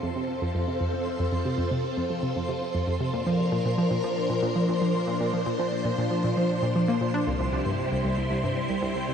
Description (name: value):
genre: ambient, sequencer-driven space music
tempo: 116 BPM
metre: 4/4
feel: straight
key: F major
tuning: A4 = 440 Hz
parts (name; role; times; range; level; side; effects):
- phased string machine; sustained chords; 0.0-9.1 s; F2 to C5; -28 LUFS; left 1 dB; ensemble chorus, phaser
- analog pluck; riff; 0.0-9.1 s; C2 to D4; -27 LUFS; equal; chorus, tape echo
- twinkling granular texture; texture; 0.0-9.1 s; C5; -33 LUFS; right 1 dB; built-in reverb
room: wet huge ambient reverb, RT60 7.7 s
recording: dark, warm production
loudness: -24 LUFS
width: side -7 dB against mid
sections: 0.0-9.1 A section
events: none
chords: 0.0 F; 3.1 Bb; 7.3 C